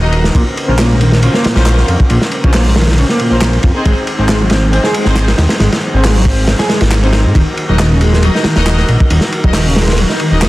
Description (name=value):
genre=breakbeat, breaks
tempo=137 BPM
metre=4/4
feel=swing 54% on 16ths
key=Eb dorian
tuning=A4 = 444 Hz
part: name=tonewheel organ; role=sustained chords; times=0.0-10.5 s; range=Db3 to C4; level=-23 LUFS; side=right 1 dB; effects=none
part: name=warm studio string section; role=stabs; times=0.0-10.4 s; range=C4 to Eb5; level=-20 LUFS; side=left 1 dB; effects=low-pass filter, digital delay
part: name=fat analog bass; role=bass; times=0.0-10.5 s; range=Eb1 to Ab2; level=-12 LUFS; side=equal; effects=none
part: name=crunchy breakbeat drum kit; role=drums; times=0.1-10.5 s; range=hi-hat, kick drum, ride cymbal, snare drum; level=-14 LUFS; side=equal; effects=none
part: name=electric guitar at the edge of break-up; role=riff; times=0.3-10.3 s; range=Ab2 to Ab4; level=-17 LUFS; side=equal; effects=vintage 12-bit sampler grit, digital delay
part: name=electronic handclaps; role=drums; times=0.8-10.5 s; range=none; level=-25 LUFS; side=equal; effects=none
part: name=swell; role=sound effects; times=6.8-7.4 s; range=none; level=-30 LUFS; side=left 1 dB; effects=none
room=small room ambience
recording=dense, heavily limited modern master, vinyl crackle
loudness=-9 LUFS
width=side -18 dB against mid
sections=0.0-10.5 A section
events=filter sweep on string section 0.0-10.5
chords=0.3 Bbmadd9; 3.9 Ab; 7.4 Ebm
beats=| 0.35 0.79 1.23 1.66 | 2.10 2.54 2.98 3.42 | 3.85 4.29 4.73 5.17 | 5.61 6.04 6.48 6.92 | 7.36 7.79 8.23 8.67 | 9.11 9.55 9.98 10.42